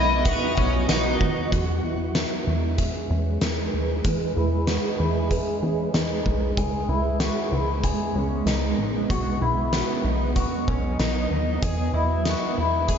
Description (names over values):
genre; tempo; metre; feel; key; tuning
dream pop; 95 BPM; 4/4; straight; E major; A4 = 440 Hz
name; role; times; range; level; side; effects
clean electric guitar; accompaniment; 0.0-2.1 s; F#3 to B4; -32 LUFS; right 6 dB; tremolo, lush chorus
shimmering ambient pad; sustained chords; 0.0-13.0 s; C#3 to D#5; -28 LUFS; right 2 dB; chorus, built-in reverb, low-pass filter
picked twelve-string acoustic guitar; arpeggios; 0.0-13.0 s; C#4 to G#4; -28 LUFS; left 4 dB; analog chorus, low-pass filter, ping-pong delay
plucky analog bass; bass; 0.0-13.0 s; A1 to E2; -26 LUFS; equal; none
twinkling granular texture; texture; 0.1-1.0 s; F#4; -33 LUFS; right 4 dB; built-in reverb, ping-pong delay
oversized low-tuned drum kit; drums; 0.2-13.0 s; hi-hat, kick drum, snare drum, tambourine; -27 LUFS; equal; none
room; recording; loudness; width
light reverb, small room ambience; nothing above 7.5 kHz; -21 LUFS; side -7 dB against mid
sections
0.0-1.5 A section; 1.5-13.0 B section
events
filter sweep 1.5-13.0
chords
0.0 B; 1.5 E; 6.6 C#m7; 9.1 B; 11.6 E